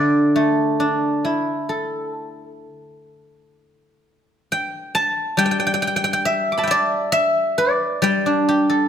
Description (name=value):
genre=chinese traditional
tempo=60-70 BPM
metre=4/4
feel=rubato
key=D zhi mode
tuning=A4 = 440 Hz
part: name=guzheng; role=solo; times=0.0-8.9 s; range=D3 to D6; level=-17 LUFS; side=equal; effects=none
room=moderate recital hall reverb, RT60 1.7 s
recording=none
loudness=-17 LUFS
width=side -8 dB against mid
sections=0.0-3.6 A section; 3.6-8.9 B section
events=none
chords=none